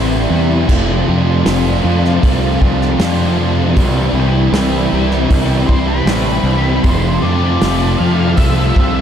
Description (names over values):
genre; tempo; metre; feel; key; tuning
rock, shoegaze and dream pop; 78 BPM; 4/4; straight; unclear; A4 = 440 Hz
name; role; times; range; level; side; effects
string machine, cellos; sustained chords; 0.0-9.0 s; E4 to A5; -23 LUFS; left 1 dB; ensemble chorus
biting overdriven guitar; riff; 0.0-9.0 s; F2 to F4; -18 LUFS; right 6 dB; reverse reverb
thick fuzz guitar; riff; 0.0-9.0 s; F2 to C4; -18 LUFS; left 7 dB; distortion, ensemble chorus
growling fingered electric bass; bass; 0.0-9.0 s; F1 to F2; -16 LUFS; equal; overdrive
loose indie drum kit; drums; 0.7-8.9 s; crash cymbal, hi-hat, kick drum, snare drum; -18 LUFS; equal; none
octave-fuzz lead guitar; melody; 5.7-9.0 s; B4 to F5; -23 LUFS; left 2 dB; distortion, diffuse ambient delay
room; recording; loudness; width
wet lush hall reverb, RT60 2.8 s; dreamy mix soaked in reverb; -11 LUFS; side -9 dB against mid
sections
0.0-9.0 A section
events
none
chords
0.0 Cadd9; 0.7 F6; 3.8 Cadd9; 6.8 F6